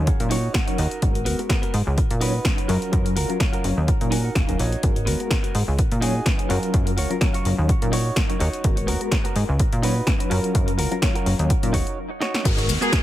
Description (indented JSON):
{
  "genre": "filtered disco house",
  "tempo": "126 BPM",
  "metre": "4/4",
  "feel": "swing 54% on 16ths",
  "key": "G# dorian",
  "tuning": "A4 = 440 Hz",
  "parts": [
    { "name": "reed electric piano", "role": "accompaniment", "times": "0.0-13.0 s", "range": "F#3 to E#5", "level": "-28 LUFS", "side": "left 2 dB", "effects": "fast tremolo, phaser, sidechain pumping, low-pass filter, analog delay" },
    { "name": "plucky analog bass", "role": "bass", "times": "0.0-12.8 s", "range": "D#1 to A#2", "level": "-23 LUFS", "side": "equal", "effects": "sidechain pumping, low-pass filter" },
    { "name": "direct-recorded clean electric guitar", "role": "riff", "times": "0.1-13.0 s", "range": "B3 to G#5", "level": "-30 LUFS", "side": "right 2 dB", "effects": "sidechain pumping, low-pass filter, analog delay" },
    { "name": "electronic kick drum", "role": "drums", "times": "0.1-13.0 s", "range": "none", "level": "-22 LUFS", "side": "equal", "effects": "none" },
    { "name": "punchy analog drum machine", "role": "drums", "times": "0.1-13.0 s", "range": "crash cymbal, hi-hat, shaker, snare drum", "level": "-28 LUFS", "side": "left 1 dB", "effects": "sidechain pumping on hats, sidechain pumping on cymbals, sidechain pumping on perc" },
    { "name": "downlifter", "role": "sound effects", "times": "12.5-13.0 s", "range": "none", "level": "-28 LUFS", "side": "equal", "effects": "none" },
    { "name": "clear horn section", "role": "melody", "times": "12.8-13.0 s", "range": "G#4", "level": "-22 LUFS", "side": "right 1 dB", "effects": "sidechain pumping, low-pass filter" }
  ],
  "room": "little or no reverb",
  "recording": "echo-heavy mix",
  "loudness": "-19 LUFS",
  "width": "side -14 dB against mid",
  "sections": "0.0-12.5 A section",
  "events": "clean electric guitar fill 0.3-1.0, 3.9-4.8; break 12.0-12.5; drum fill 12.2",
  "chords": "0.1 D#m7; 1.0 G#m9; 2.0 C#9sus4; 2.7 F#maj7; 3.9 D#m7; 4.8 G#m9; 5.8 C#9sus4; 6.5 F#maj7; 7.7 D#m7; 8.6 G#m9; 9.6 C#9sus4; 10.3 F#maj7; 11.5 D#m7; 12.5 G#m9",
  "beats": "0.07 0.55 | 1.02 1.50 1.98 2.45 | 2.93 3.40 3.88 4.36 | 4.83 5.31 5.79 6.26 | 6.74 7.21 7.69 8.17 | 8.64 9.12 9.60 10.07 | 10.55 11.03 11.50 11.98 | 12.45 12.93"
}